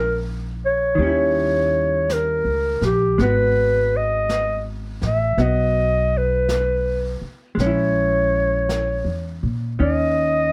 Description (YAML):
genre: jazz ballad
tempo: 54 BPM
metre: 4/4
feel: swing 67% on 8ths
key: G# minor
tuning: A4 = 442 Hz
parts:
  - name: warm clarinet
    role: melody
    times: 0.0-10.5 s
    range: G4 to E5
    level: -22 LUFS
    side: equal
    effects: plate reverb
  - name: vintage hollow-body jazz guitar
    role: accompaniment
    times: 0.0-10.5 s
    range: D#3 to F#4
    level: -28 LUFS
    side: equal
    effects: none
  - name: upright bass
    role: bass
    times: 0.0-10.5 s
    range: G#1 to A#2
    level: -26 LUFS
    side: equal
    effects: none
  - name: jazz brush drum kit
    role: drums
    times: 1.0-10.5 s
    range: brushed snare drum, hi-hat, snare drum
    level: -38 LUFS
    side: equal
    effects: none
room: light reverb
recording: none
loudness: -20 LUFS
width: mono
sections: 0.0-10.5 A section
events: none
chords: 0.0 A#m7; 1.0 D#7b9; 3.2 G#m7; 7.6 A#m7b5; 9.8 D#5